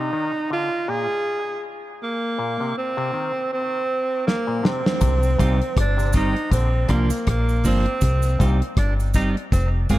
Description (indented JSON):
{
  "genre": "dub reggae",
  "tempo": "80 BPM",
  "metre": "4/4",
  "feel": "swing 57% on 16ths",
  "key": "C minor",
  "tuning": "A4 = 437 Hz",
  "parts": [
    { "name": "breathy tenor saxophone", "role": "melody", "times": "0.0-10.0 s", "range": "Bb3 to Ab4", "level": "-24 LUFS", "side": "right 2 dB", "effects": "dub echo" },
    { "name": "auto-wah clav", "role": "arpeggios", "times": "0.0-8.6 s", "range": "Bb2 to Eb3", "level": "-32 LUFS", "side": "left 5 dB", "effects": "dub echo" },
    { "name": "damped 70s drum kit", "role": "drums", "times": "4.3-10.0 s", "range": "hi-hat, kick drum, rim click, snare drum", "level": "-22 LUFS", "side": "equal", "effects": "none" },
    { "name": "deep dub fingered electric bass", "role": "bass", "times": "5.0-10.0 s", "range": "F1 to C2", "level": "-20 LUFS", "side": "equal", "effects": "none" },
    { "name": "cabasa", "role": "percussion", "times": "5.0-10.0 s", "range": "none", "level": "-39 LUFS", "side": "right 10 dB", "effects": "none" },
    { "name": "clean electric guitar", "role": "accompaniment", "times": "5.4-10.0 s", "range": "F3 to Ab4", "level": "-26 LUFS", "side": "right 2 dB", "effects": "dub echo" }
  ],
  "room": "light reverb, studio reverb",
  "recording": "echo-heavy mix",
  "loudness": "-19 LUFS",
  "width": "side -16 dB against mid",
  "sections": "0.0-10.0 A section",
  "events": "break 0.0-5.0; drum fill 4.3-5.0",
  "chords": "0.0 Cm; 0.5 Bb; 2.0 Cm; 3.5 Bbsus2; 5.0 Cm; 6.5 Bb; 8.0 Cm",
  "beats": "0.51 1.26 | 2.02 2.77 3.52 4.27 | 5.02 5.77 6.52 7.27 | 8.02 8.78 9.53"
}